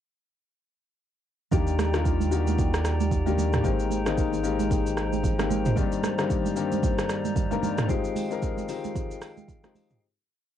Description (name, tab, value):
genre	amapiano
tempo	113 BPM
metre	4/4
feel	swing 58% on 16ths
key	Eb major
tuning	A4 = 441 Hz
part	warm baby grand piano	accompaniment	1.5-10.0 s	G2 to Bb4	-28 LUFS	left 8 dB	cassette tape
part	pipe organ, stopped flute	sustained chords	1.5-10.0 s	Eb3 to Bb5	-34 LUFS	right 1 dB	cassette tape
part	punchy sub bass	bass	1.5-5.7 s	Ab1 to Eb2	-28 LUFS	right 1 dB	none
part	deep house drum kit	drums	1.5-10.0 s	hi-hat, kick drum, rim click, shaker, toms	-28 LUFS	right 2 dB	none
part	congas	percussion	1.5-9.9 s	none	-32 LUFS	right 13 dB	none
room	light reverb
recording	home recording on cassette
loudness	-23 LUFS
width	side -10 dB against mid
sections	1.5-10.0 groove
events	fade-out 7.9-10.0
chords	1.5 Ebmaj7; 3.6 Abmaj9; 5.8 Cm9/G; 7.9 Fm9